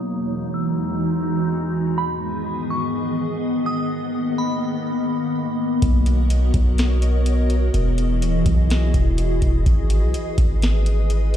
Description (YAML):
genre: hip hop, atmospheric cloud-rap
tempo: 125 BPM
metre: 4/4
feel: half-time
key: unclear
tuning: A4 = 441 Hz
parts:
  - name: glassy synth bell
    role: melody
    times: 0.0-5.8 s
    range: B5 to E6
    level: -30 LUFS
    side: right 2 dB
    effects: chorus, phaser, low-pass filter, ping-pong delay
  - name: glassy FM pad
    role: sustained chords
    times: 0.0-11.4 s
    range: E2 to D#5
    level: -22 LUFS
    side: left 1 dB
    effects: ensemble chorus, built-in reverb, sidechain pumping, low-pass filter
  - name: long sustained 808-style bass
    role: bass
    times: 5.8-11.4 s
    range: D#1 to B1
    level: -18 LUFS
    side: equal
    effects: none
  - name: booming analog drum machine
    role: drums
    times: 5.8-11.4 s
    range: hi-hat, kick drum, snare drum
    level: -21 LUFS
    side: equal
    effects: none
room: light reverb, digital ambience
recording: played on a big sound system in a bare room, stone room reverb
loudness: -18 LUFS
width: side -11 dB against mid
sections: 0.0-5.8 A section; 5.8-11.4 B section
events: filter sweep 0.0-5.8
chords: 0.1 Emaj7; 2.0 G#m; 5.8 Bmaj7; 7.7 Emaj7; 9.7 G#m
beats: | 0.06 0.54 1.02 1.50 | 1.98 2.46 2.94 3.42 | 3.90 4.38 4.86 5.34 | 5.82 6.30 6.78 7.26 | 7.74 8.22 8.70 9.18 | 9.66 10.14 10.62 11.10